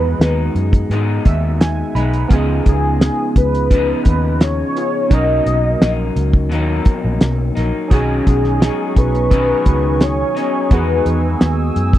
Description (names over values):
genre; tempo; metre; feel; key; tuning
indie pop, bedroom pop; 86 BPM; 4/4; straight; B major; A4 = 440 Hz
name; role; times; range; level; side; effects
warm velvety synth lead; melody; 0.0-11.8 s; G#4 to D#5; -19 LUFS; left 1 dB; lush chorus, slapback echo
electric guitar through a small old amp; accompaniment; 0.0-12.0 s; B2 to G#4; -22 LUFS; left 4 dB; wide subtle chorus, warbly pitch drift
warm analog keys; accompaniment; 0.0-12.0 s; D#3 to B5; -24 LUFS; right 6 dB; chorus, cassette tape
vintage muted fingered electric bass; bass; 0.0-12.0 s; A#1 to G#2; -18 LUFS; equal; none
cloth-damped thuddy drum kit; drums; 0.2-12.0 s; hi-hat, kick drum, snare drum; -12 LUFS; equal; none
warbly tape-like pad; sustained chords; 8.6-12.0 s; B3 to E6; -25 LUFS; right 3 dB; chorus, built-in reverb
room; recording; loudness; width
little or no reverb; dry, close 1970s-style studio recording; -13 LUFS; side -13 dB against mid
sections
0.0-7.9 A section; 7.9-12.0 A section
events
synth keys fill 0.9-2.3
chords
0.0 Emaj7; 2.3 C#9; 5.1 Bmaj7; 7.9 B69; 10.7 Emaj7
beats
0.21 0.91 1.61 | 2.31 3.01 3.71 4.41 | 5.11 5.81 6.51 7.21 | 7.91 8.61 9.31 10.01 | 10.71 11.41